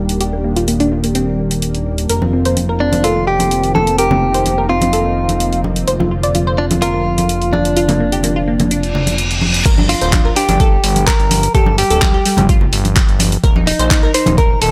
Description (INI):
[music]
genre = progressive house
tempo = 127 BPM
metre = 4/4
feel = straight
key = G minor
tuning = A4 = 438 Hz
[part]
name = warm analog pad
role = sustained chords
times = 0.0-9.6 s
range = D3 to G4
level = -24 LUFS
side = equal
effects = chorus, sidechain pumping
[part]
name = glassy wavetable pluck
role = arpeggios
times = 0.0-14.7 s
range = G3 to D5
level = -22 LUFS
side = equal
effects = chorus, sidechain pumping, tape echo
[part]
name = fat analog bass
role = bass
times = 0.0-14.7 s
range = D1 to Bb1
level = -22 LUFS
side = equal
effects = sidechain pumping
[part]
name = deep house drum kit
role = drums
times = 0.1-14.7 s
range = crash cymbal, handclaps, hi-hat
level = -22 LUFS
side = equal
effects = overdrive, sidechain pumping on hats, sidechain pumping on cymbals
[part]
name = congas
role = percussion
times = 2.2-14.4 s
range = none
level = -23 LUFS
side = equal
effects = sidechain pumping on perc
[part]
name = direct-recorded clean electric guitar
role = melody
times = 2.8-14.7 s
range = D4 to C5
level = -20 LUFS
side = equal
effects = tape echo
[part]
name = reverse cymbal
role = sound effects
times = 8.9-9.7 s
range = none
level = -21 LUFS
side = equal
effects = none
[part]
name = electronic kick drum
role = drums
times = 9.7-14.5 s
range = none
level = -16 LUFS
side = equal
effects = overdrive
[sound]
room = light reverb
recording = none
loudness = -14 LUFS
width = mono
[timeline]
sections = 0.0-9.7 A section; 9.7-14.7 B section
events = filter sweep on synth arpeggio sound 0.0-9.7; reverse cymbal 8.9-9.7; drop 9.7-14.7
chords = 0.0 Ebmaj7; 2.1 F7sus4; 5.9 Bbadd9/F; 9.7 G5; 13.4 Eb5